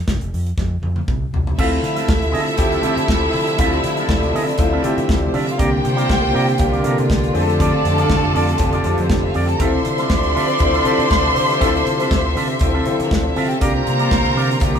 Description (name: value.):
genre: disco.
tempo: 120 BPM.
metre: 4/4.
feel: straight.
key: D minor.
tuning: A4 = 443 Hz.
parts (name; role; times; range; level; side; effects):
overdriven fingered electric bass; bass; 0.1-14.8 s; F1 to D3; -22 LUFS; equal; none.
modern studio drum kit; drums; 0.1-14.8 s; crash cymbal, hi-hat, kick drum, snare drum, toms; -21 LUFS; equal; none.
warm studio violin section; second line; 1.6-14.8 s; Bb3 to C6; -22 LUFS; left 1 dB; none.
clear concert grand piano; accompaniment; 1.6-14.8 s; A3 to C5; -23 LUFS; left 3 dB; none.
electric guitar with an envelope filter; accompaniment; 1.6-14.8 s; C4 to E5; -25 LUFS; right 4 dB; none.
rich studio string section; sustained chords; 1.6-14.8 s; C3 to E5; -24 LUFS; equal; none.
mellow horn section; stabs; 1.6-14.8 s; F3 to D5; -25 LUFS; right 3 dB; none.
room: wet studio reverb, RT60 0.6 s.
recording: band playing live in one room.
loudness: -15 LUFS.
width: side -8 dB against mid.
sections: 0.0-1.6 A section; 1.6-14.8 B section.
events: drum fill 0.6-1.6.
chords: 0.0 F5; 1.6 Dm9; 5.6 C9sus4; 7.3 F6; 9.6 Dm9; 13.6 C9sus4.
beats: 0.08 0.58 1.09 | 1.59 2.09 2.59 3.09 | 3.59 4.09 4.59 5.09 | 5.60 6.10 6.60 7.10 | 7.60 8.10 8.60 9.10 | 9.60 10.11 10.61 11.11 | 11.61 12.11 12.61 13.11 | 13.62 14.12 14.62.